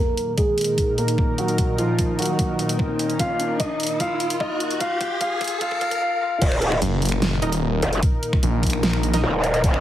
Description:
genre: heavy wobble dubstep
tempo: 149 BPM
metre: 4/4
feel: half-time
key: Eb minor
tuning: A4 = 439 Hz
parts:
  - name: dark concert grand piano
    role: melody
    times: 0.0-6.4 s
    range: F3 to F5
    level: -24 LUFS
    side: equal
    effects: low-pass filter, tape echo
  - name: lush unison pad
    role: sustained chords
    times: 0.2-9.8 s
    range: Bb2 to Bb4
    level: -27 LUFS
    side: equal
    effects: chorus, sidechain pumping
  - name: riser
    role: sound effects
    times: 2.1-6.0 s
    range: none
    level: -30 LUFS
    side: equal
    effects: none
  - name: dubstep drum kit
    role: drums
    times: 0.2-9.8 s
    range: crash cymbal, finger snaps, hi-hat, snare drum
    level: -27 LUFS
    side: equal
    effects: studio ambience
  - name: electronic kick drum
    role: drums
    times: 0.4-9.7 s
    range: none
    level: -22 LUFS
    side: equal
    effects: studio ambience
  - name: growl bass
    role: bass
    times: 6.4-9.8 s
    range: Eb1 to Gb1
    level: -20 LUFS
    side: equal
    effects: chorus, overdrive
  - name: snarling distorted saw bass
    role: bass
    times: 6.8-9.2 s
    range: Eb1 to Bb1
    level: -21 LUFS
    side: equal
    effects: overdrive
  - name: orchestra-hit-like synth stab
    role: stabs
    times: 7.4-9.2 s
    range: Eb4 to Eb5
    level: -29 LUFS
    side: right 3 dB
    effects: built-in reverb, tape echo
room: light reverb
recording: heavily compressed radio sound, high-pass filter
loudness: -19 LUFS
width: side -12 dB against mid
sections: 0.0-6.4 A section; 6.4-9.8 B section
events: build-up 0.0-6.4; filter sweep on grand piano 0.0-6.4; filter sweep 0.0-6.4; riser 2.1-6.0; drum fill 3.2-6.0; drop 6.4-9.8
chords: 0.0 Eb5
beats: 0.38 0.78 1.18 | 1.58 1.99 2.39 2.79 | 3.19 3.60 4.00 4.40 | 4.81 5.21 5.61 6.01 | 6.42 6.82 7.22 7.62 | 8.03 8.43 8.83 9.23 | 9.64

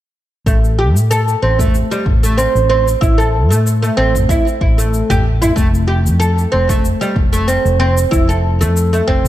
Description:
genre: organic downtempo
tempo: 94 BPM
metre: 4/4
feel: swing 54% on 16ths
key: A minor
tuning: A4 = 441 Hz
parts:
  - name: oud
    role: arpeggios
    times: 0.5-9.2 s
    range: G3 to A4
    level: -16 LUFS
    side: right 1 dB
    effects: vintage 12-bit sampler grit, digital delay
  - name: woody fretless electric bass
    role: bass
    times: 0.5-9.3 s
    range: F1 to A2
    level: -15 LUFS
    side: equal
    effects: sidechain pumping
  - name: electronic kick drum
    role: drums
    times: 0.5-9.2 s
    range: none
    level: -15 LUFS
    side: equal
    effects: none
  - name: electronic shaker and toms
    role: drums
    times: 0.5-9.3 s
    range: none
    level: -23 LUFS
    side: equal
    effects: overdrive
room: light reverb, digital ambience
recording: dark, warm production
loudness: -12 LUFS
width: side -13 dB against mid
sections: 0.5-9.3 A section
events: none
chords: 0.5 Am; 5.6 F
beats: | 0.47 1.10 1.74 2.38 | 3.02 3.66 4.29 4.93 | 5.57 6.21 6.85 7.49 | 8.12 8.76

